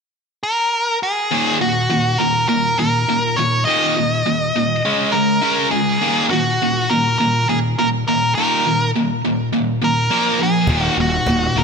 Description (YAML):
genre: hard rock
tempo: 102 BPM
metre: 4/4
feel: straight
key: Eb minor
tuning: A4 = 439 Hz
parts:
  - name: nasal lead guitar with a parked wah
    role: melody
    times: 0.4-11.6 s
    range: Gb4 to Eb5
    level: -18 LUFS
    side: equal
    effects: overdrive, digital delay
  - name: tight distorted guitar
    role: riff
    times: 1.3-11.6 s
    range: Eb2 to Db4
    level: -18 LUFS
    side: equal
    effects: distortion
  - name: fuzz picked electric bass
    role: bass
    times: 10.7-11.6 s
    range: Eb1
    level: -21 LUFS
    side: equal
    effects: overdrive
  - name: cajon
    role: drums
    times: 10.7-11.4 s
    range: none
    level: -24 LUFS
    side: equal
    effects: none
room: moderate lush hall reverb, RT60 2.4 s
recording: bright 1980s-style digital production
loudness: -15 LUFS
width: side -5 dB against mid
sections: 0.0-1.3 A section; 1.3-11.6 B section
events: none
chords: 0.0 N.C.; 1.3 Eb5; 4.8 Db5; 6.0 Eb5; 10.1 Bb5; 10.7 Ebm